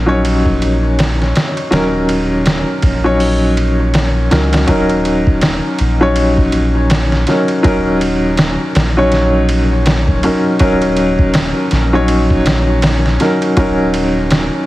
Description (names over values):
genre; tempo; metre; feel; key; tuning
trip hop; 81 BPM; 4/4; swing 59% on 16ths; Eb minor; A4 = 440 Hz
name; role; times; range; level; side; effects
felt-muted upright piano; accompaniment; 0.0-14.7 s; Gb3 to Db5; -14 LUFS; equal; tremolo, tape echo
soft dub sub bass; bass; 0.0-14.5 s; Eb1 to Db2; -16 LUFS; equal; tube saturation
trip hop sampler-style drum kit; drums; 0.2-14.5 s; hi-hat, kick drum, ride cymbal, snare drum; -17 LUFS; equal; small room reverb
room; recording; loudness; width
light reverb; heavily compressed radio sound, multiband compression, vinyl crackle; -11 LUFS; side -17 dB against mid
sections
0.0-4.7 A section; 4.7-14.7 B section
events
none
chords
0.0 Ebm7